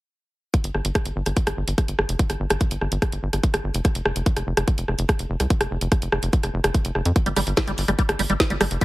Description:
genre	psychedelic trance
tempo	145 BPM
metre	4/4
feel	straight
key	unclear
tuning	A4 = 441 Hz
part	drum and bass drum kit	drums	0.5-8.8 s	hi-hat, rim click, snare drum	-24 LUFS	equal	none
part	electronic kick drum	drums	0.5-8.8 s	none	-20 LUFS	equal	none
part	tight sequencer bass	bass	0.6-8.8 s	F1 to F2	-25 LUFS	equal	none
part	liquid acid bass	riff	7.3-8.8 s	G3	-25 LUFS	right 1 dB	chorus, auto-pan, sidechain pumping, dub echo
room	little or no reverb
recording	heavily compressed radio sound, multiband compression, lossy compression artefacts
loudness	-20 LUFS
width	side -19 dB against mid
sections	0.5-8.8 A section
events	none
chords	0.5 N.C.; 3.8 F5; 7.2 N.C.

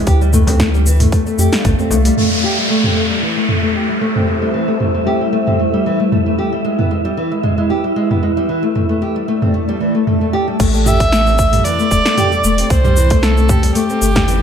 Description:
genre	organic downtempo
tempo	114 BPM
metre	4/4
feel	swing 54% on 16ths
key	A minor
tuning	A4 = 440 Hz
part	granular cloud pad	sustained chords	0.0-10.6 s	G3 to A5	-20 LUFS	right 1 dB	built-in reverb, sidechain pumping
part	nylon-string guitar	arpeggios	0.0-14.4 s	E3 to G4	-18 LUFS	left 2 dB	low-pass filter, tape echo
part	warm sub bass	bass	0.1-2.1, 10.6-14.4 s	E1 to F2	-14 LUFS	equal	none
part	deep house drum kit	drums	0.1-14.4 s	crash cymbal, hi-hat, shaker, snare drum, toms	-19 LUFS	right 1 dB	overdrive, low-pass filter on perc, low-pass filter on hats, low-pass filter on snare, low-pass filter on toms, low-pass filter on cymbals, low-pass filter on room
part	electronic kick drum	drums	0.1-1.8, 10.6-14.3 s	none	-17 LUFS	equal	overdrive
part	frame drum	percussion	0.5-2.0 s	none	-26 LUFS	left 1 dB	none
part	downlifter	sound effects	2.2-6.4 s	none	-21 LUFS	equal	none
part	wind-like tuned noise texture	texture	3.0-10.6 s	E4 to E5	-26 LUFS	equal	built-in reverb
part	warm kamancheh	melody	10.9-14.4 s	G4 to E5	-16 LUFS	right 2 dB	tape echo
room	light reverb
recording	none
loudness	-12 LUFS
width	side -8 dB against mid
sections	0.0-2.2 A section; 2.2-10.6 B section; 10.6-14.4 C section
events	filter sweep on nylon-string guitar 2.2-10.6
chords	0.1 Dm; 2.2 Am7; 4.3 C; 6.4 E; 8.5 D5; 10.6 A7(no3); 12.7 C

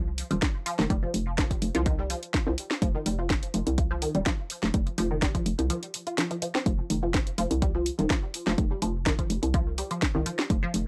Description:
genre	minimal techno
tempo	125 BPM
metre	4/4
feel	swing 53% on 16ths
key	unclear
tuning	A4 = 440 Hz
part	hollow knocking FM bass	bass	0.0-10.9 s	Eb1 to C2	-31 LUFS	equal	sidechain pumping
part	house drum kit	drums	0.2-10.8 s	hi-hat, snare drum	-33 LUFS	equal	overdrive
part	resonant blip pluck	riff	0.3-10.7 s	Eb3 to F4	-35 LUFS	equal	phaser, ensemble chorus, sidechain pumping, tape echo
part	electronic kick drum	drums	0.4-10.6 s	none	-30 LUFS	equal	overdrive
room	light reverb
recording	dry, gritty hardware recording, transformer saturation, cassette tape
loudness	-28 LUFS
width	mono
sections	0.0-10.9 A section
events	break 5.7-6.7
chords	0.0 F5

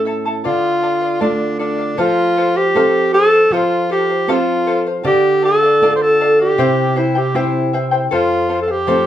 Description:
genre	andean folk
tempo	78 BPM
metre	2/4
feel	straight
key	unclear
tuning	A4 = 440 Hz
part	mellow alto saxophone	melody	0.0-9.1 s	D4 to C5	-14 LUFS	equal	none
part	charango	accompaniment	0.0-9.1 s	E4 to A5	-20 LUFS	left 4 dB	none
part	nylon-string guitar	accompaniment	0.0-9.1 s	F2 to A4	-20 LUFS	right 2 dB	none
room	wet studio reverb, RT60 0.5 s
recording	band playing live in one room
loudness	-13 LUFS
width	side -11 dB against mid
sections	0.0-2.0 A section; 2.0-9.1 B section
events	none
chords	0.5 Dm; 2.0 F; 5.0 Dm; 6.6 C; 8.1 F

